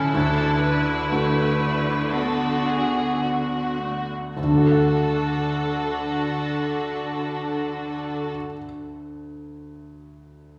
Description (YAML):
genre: cinematic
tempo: 51-63 BPM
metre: 4/4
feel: rubato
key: D major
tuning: A4 = 440 Hz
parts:
  - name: clear studio violin section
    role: second line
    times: 0.0-8.3 s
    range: E4 to B4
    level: -30 LUFS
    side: equal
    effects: none
  - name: mellow clarinet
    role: second line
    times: 0.0-8.3 s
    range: A3 to D4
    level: -30 LUFS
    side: equal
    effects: none
  - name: clear grand piano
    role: accompaniment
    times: 0.0-10.6 s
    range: D2 to F#5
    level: -28 LUFS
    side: equal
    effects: none
  - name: concert harp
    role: arpeggios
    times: 0.0-8.7 s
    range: D3 to F#5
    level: -38 LUFS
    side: equal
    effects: none
  - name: rich studio cello section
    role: bass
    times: 0.0-8.3 s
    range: C#3 to D3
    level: -31 LUFS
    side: equal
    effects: none
room: wet scoring stage reverb, RT60 1.9 s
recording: heard from further back in the room, studio ambience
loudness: -23 LUFS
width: mono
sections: 0.0-4.4 A section; 4.4-8.9 B section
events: slowing down 0.0-4.4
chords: 0.1 D